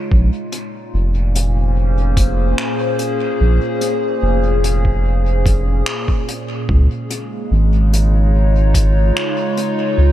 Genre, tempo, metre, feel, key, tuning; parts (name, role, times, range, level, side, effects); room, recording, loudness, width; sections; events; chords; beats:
ambient dub; 73 BPM; 4/4; straight; Bb minor; A4 = 440 Hz
warbly tape-like pad; sustained chords; 0.0-10.1 s; Bb2 to Db5; -20 LUFS; left 1 dB; chorus, built-in reverb, phaser
soft dub sub bass; bass; 0.1-10.1 s; F1 to Db2; -14 LUFS; equal; tube saturation
electronic kick drum; drums; 0.1-8.9 s; -16 LUFS; equal
vintage brush drum kit; drums; 0.5-9.7 s; finger snaps, hi-hat; -25 LUFS; left 1 dB; dub echo
small room ambience; -14 LUFS; side -13 dB against mid
0.0-10.1 A section
0.1 Bbm7; 6.7 Dbadd9
| 0.12 0.94 1.76 2.58 | 3.40 4.23 5.05 5.87 | 6.69 7.51 8.34 9.16 | 9.98